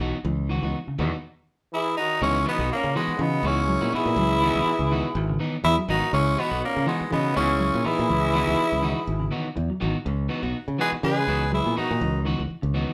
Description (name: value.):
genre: afrobeat.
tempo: 123 BPM.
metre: 4/4.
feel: swing 55% on 16ths.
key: C# dorian.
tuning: A4 = 440 Hz.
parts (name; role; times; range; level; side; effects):
electric guitar at the edge of break-up; stabs; 0.0-12.9 s; E3 to F#4; -33 LUFS; equal; none.
modern bright fingered electric bass; bass; 0.0-12.8 s; G#1 to C#3; -29 LUFS; equal; none.
clean electric guitar; arpeggios; 0.3-12.9 s; C#3 to F#3; -33 LUFS; equal; none.
raspy tenor saxophone; melody; 1.7-12.2 s; G#3 to G#4; -27 LUFS; equal; none.
breathy alto saxophone; second line; 1.7-12.2 s; B3 to B4; -34 LUFS; equal; none.
bright bass trombone; second line; 1.7-12.2 s; G#2 to G#3; -34 LUFS; equal; none.
room: moderate studio reverb, RT60 0.5 s.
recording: band playing live in one room.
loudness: -24 LUFS.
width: mono.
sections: 0.0-2.2 A section; 2.2-12.9 B section.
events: none.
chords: 0.0 C#m11.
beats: | 0.26 0.75 1.24 1.73 | 2.22 2.71 3.20 3.69 | 4.18 4.67 5.16 5.65 | 6.13 6.62 7.11 7.60 | 8.09 8.58 9.07 9.56 | 10.05 10.54 11.03 11.52 | 12.01 12.49.